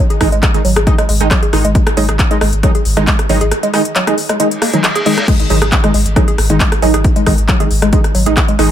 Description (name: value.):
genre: driving peak-time techno.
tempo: 136 BPM.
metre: 4/4.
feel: straight.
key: unclear.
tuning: A4 = 440 Hz.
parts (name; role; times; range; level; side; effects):
woody wave-folded pluck; riff; 0.0-8.6 s; F#3 to G#4; -19 LUFS; left 1 dB; chorus, cassette tape, sidechain pumping, ping-pong delay.
techno drum kit; drums; 0.1-8.7 s; crash cymbal, handclaps, hi-hat, rim click; -18 LUFS; left 1 dB; sidechain pumping on hats, sidechain pumping on cymbals.
rave stab; stabs; 0.2-8.7 s; D#3 to D#4; -17 LUFS; right 3 dB; chorus, built-in reverb, sidechain pumping, ping-pong delay.
warm sub bass; bass; 0.2-8.7 s; G#1; -16 LUFS; equal; sidechain pumping, low-pass filter.
electronic kick drum; drums; 0.2-8.5 s; none; -13 LUFS; equal; none.
reverse cymbal and impact; sound effects; 4.6-7.0 s; none; -24 LUFS; left 2 dB; none.
room: little or no reverb.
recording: none.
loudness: -10 LUFS.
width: side -10 dB against mid.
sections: 0.0-5.3 A section; 5.3-8.7 B section.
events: reverse cymbal 4.6-5.3; drop 5.3-8.7; impact 5.3-7.0.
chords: 0.0 G#5.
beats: 0.43 0.87 1.31 | 1.75 2.19 2.63 3.08 | 3.52 3.96 4.40 4.84 | 5.28 5.72 6.16 6.60 | 7.04 7.49 7.93 8.37.